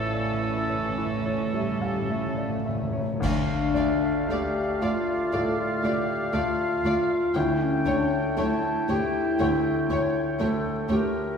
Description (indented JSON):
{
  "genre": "classical, romantic movement for piano and orchestra",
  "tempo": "52-60 BPM",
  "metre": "4/4",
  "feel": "rubato",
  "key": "D minor",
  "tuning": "A4 = 440 Hz",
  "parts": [
    { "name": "clear grand piano", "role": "melody", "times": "0.0-11.4 s", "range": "D2 to F5", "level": "-29 LUFS", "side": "left 2 dB", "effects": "none" },
    { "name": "dark studio violin section", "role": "melody", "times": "0.0-11.0 s", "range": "E4 to G5", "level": "-42 LUFS", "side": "left 3 dB", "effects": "none" },
    { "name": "clear oboe", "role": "second line", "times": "0.0-11.1 s", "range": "A4 to G5", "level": "-33 LUFS", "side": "right 1 dB", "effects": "none" },
    { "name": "warm symphonic violin section", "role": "second line", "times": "0.0-11.0 s", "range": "C#4 to D5", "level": "-38 LUFS", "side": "left 2 dB", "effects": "none" },
    { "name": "dark symphonic viola section", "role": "accompaniment", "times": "0.0-11.0 s", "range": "E3 to A3", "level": "-34 LUFS", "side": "right 2 dB", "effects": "none" },
    { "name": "warm symphonic cello section", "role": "bass", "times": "0.0-11.0 s", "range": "D2 to A2", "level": "-34 LUFS", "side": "right 3 dB", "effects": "none" },
    { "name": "warm symphonic double bass section", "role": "bass", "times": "0.0-11.0 s", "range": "A1 to D2", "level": "-36 LUFS", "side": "right 4 dB", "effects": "none" },
    { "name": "timpani", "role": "percussion", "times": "0.0-4.8 s", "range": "A2 to D3", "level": "-34 LUFS", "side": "left 1 dB", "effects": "none" },
    { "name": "bright baroque flute", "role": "second line", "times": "3.2-11.4 s", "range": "A4 to A5", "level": "-34 LUFS", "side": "left 3 dB", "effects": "none" },
    { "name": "warm clarinet", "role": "second line", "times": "3.2-10.9 s", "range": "C#4 to A4", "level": "-33 LUFS", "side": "equal", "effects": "none" },
    { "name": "mellow bassoon", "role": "accompaniment", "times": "3.2-11.4 s", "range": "A3", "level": "-35 LUFS", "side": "equal", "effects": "none" },
    { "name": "dark French horn section", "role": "sustained chords", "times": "3.2-10.9 s", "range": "C#4 to A4", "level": "-28 LUFS", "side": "left 2 dB", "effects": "none" },
    { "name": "clash cymbals and concert bass drum", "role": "percussion", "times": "3.2-5.3 s", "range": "none", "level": "-35 LUFS", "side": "left 1 dB", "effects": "none" }
  ],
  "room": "wet scoring stage reverb, RT60 1.8 s",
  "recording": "heard from further back in the room",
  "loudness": "-23 LUFS",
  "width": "side -6 dB against mid",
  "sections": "0.0-3.2 A section; 3.2-11.4 B section",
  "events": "timpani fill 0.0-3.2; band accent 3.2-4.3",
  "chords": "0.0 A; 3.2 Dm; 7.3 A7/D"
}